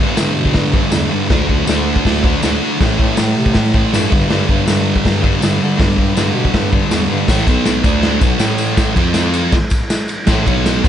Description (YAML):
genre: garage rock duo or trio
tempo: 160 BPM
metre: 4/4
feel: straight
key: A minor from 7.3 s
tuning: A4 = 439 Hz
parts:
  - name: thick fuzz guitar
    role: riff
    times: 0.0-10.9 s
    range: G2 to F4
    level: -16 LUFS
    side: equal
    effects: distortion
  - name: dark bass clarinet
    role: bass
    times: 0.0-10.9 s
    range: B1 to D3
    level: -21 LUFS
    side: equal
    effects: none
  - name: raw garage drum kit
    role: drums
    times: 0.2-10.9 s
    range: crash cymbal, hi-hat, kick drum, ride cymbal, snare drum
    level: -16 LUFS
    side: equal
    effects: none
  - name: tambourine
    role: percussion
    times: 0.2-10.9 s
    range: none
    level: -30 LUFS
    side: left 8 dB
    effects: none
room: little or no reverb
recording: nothing above 10.6 kHz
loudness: -12 LUFS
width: side -10 dB against mid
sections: 0.0-7.3 A section; 7.3-10.9 B section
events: none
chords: 0.0 G5; 1.3 D5; 2.8 A5; 4.1 G5; 7.3 A5; 7.5 B5; 7.8 D5; 8.2 A5; 9.0 F5; 10.3 A5; 10.5 B5